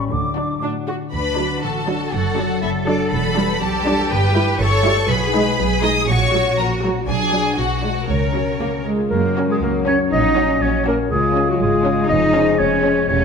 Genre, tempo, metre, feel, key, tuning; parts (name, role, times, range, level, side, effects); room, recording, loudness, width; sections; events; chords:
cinematic, playful, whimsical film cue; 121 BPM; 2/4; straight; D major, F# major from 5.1 s; A4 = 442 Hz
rich studio violin section; melody; 0.0-13.0 s; C#5 to D#6; -25 LUFS; left 2 dB
mellow flute section; second line; 0.0-0.6 s; D6; -27 LUFS; left 1 dB
warm studio violin section; second line; 0.0-13.0 s; C#4 to D#5; -25 LUFS; left 2 dB
warm studio viola section; accompaniment; 0.0-13.0 s; F#3 to F#4; -24 LUFS; right 2 dB
mellow French horn section; sustained chords; 0.0-0.9, 9.1-13.2 s; F#3 to G#4; -22 LUFS; left 3 dB
concert harp; arpeggios; 0.0-13.2 s; E2 to E5; -25 LUFS; left 8 dB
rich studio cello section; bass; 0.1-13.2 s; A2 to B4; -24 LUFS; right 1 dB
rich studio double bass section; bass; 0.1-13.2 s; E1 to F#2; -23 LUFS; right 4 dB
mellow clarinet; second line; 9.1-13.2 s; F#4 to D#5; -19 LUFS; equal
moderate scoring stage reverb, RT60 1.6 s; -16 LUFS; side -6 dB against mid
0.0-1.1 A section; 1.1-9.1 B section; 9.1-13.2 A section
0.1 D; 2.1 D/F#; 3.1 Em7; 4.1 Em/G; 5.1 G#m/B; 6.1 F#/A#; 7.1 Bm; 7.6 G#m7b5/B; 8.1 F#/C#; 8.6 C#; 9.1 F#; 10.1 F#/A#; 11.1 C#; 12.1 C#/E#